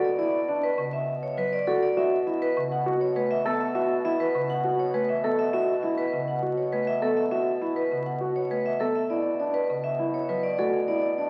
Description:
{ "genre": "classical, minimalist pattern music", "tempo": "101 BPM", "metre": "3/4", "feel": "straight", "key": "unclear", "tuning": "A4 = 440 Hz", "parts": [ { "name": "vibraphone with medium hard mallets", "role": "melody", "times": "0.0-11.3 s", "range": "A4 to F#5", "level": "-29 LUFS", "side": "equal", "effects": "none" }, { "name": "dark baby grand piano", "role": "arpeggios", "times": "0.0-11.3 s", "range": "D4 to A4", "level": "-30 LUFS", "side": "equal", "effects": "none" }, { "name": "clear bassoon", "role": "bass", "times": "0.0-11.3 s", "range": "B2", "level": "-36 LUFS", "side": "equal", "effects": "none" }, { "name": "folk marimba with medium hard mallets", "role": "accompaniment", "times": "0.8-10.8 s", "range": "C#3 to B3", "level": "-38 LUFS", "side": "equal", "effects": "none" } ], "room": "wet scoring stage reverb, RT60 2.0 s", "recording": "very old 78 rpm record, vinyl crackle", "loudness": "-26 LUFS", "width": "mono", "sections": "0.0-11.3 A section", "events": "none", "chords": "0.0 Bm; 2.0 F#m7/B; 9.1 Bmadd11" }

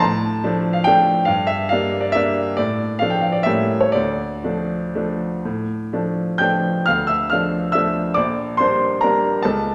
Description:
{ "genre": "classical, piano waltz", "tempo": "117-147 BPM", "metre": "3/4", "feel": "rubato", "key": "D minor", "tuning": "A4 = 440 Hz", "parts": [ { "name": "clear grand piano", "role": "solo", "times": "0.0-9.7 s", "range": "Bb1 to G6", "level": "-20 LUFS", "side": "equal", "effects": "none" } ], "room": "wet recital hall reverb, RT60 1.6 s", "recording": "none", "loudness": "-20 LUFS", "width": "mono", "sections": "0.0-6.9 A section; 6.9-9.7 B section", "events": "none", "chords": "0.0 Dm; 1.3 Gm; 2.6 Dm/A; 3.5 A7b9; 4.0 Dm; 8.2 Gm/Bb" }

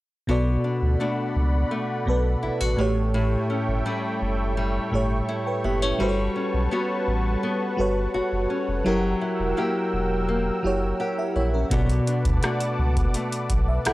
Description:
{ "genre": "contemporary R&B", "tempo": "84 BPM", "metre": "4/4", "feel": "straight", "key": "B minor", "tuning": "A4 = 440 Hz", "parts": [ { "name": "FM electric piano with soft pad layer", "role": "accompaniment", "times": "0.3-13.9 s", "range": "A2 to G5", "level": "-26 LUFS", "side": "right 1 dB", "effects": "chorus" }, { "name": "warm analog pad", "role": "sustained chords", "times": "0.7-13.9 s", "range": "A4 to E6", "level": "-31 LUFS", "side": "right 1 dB", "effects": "chorus" }, { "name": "nylon-string guitar", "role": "arpeggios", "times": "0.3-13.9 s", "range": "A2 to G4", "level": "-28 LUFS", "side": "left 2 dB", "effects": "none" }, { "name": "warm sub bass", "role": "bass", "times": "0.3-13.9 s", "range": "E1 to D2", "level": "-25 LUFS", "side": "equal", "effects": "none" }, { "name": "booming analog drum machine", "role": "drums", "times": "11.7-13.9 s", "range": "hi-hat, kick drum, rim click", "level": "-24 LUFS", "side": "equal", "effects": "none" } ], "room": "little or no reverb", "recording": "dry, gritty hardware recording, cassette tape", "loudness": "-22 LUFS", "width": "side -18 dB against mid", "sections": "0.3-13.9 A section", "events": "none", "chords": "0.3 Bm7; 2.8 A7; 6.0 Gmaj9#11; 8.9 F#7b9; 11.7 Bm7" }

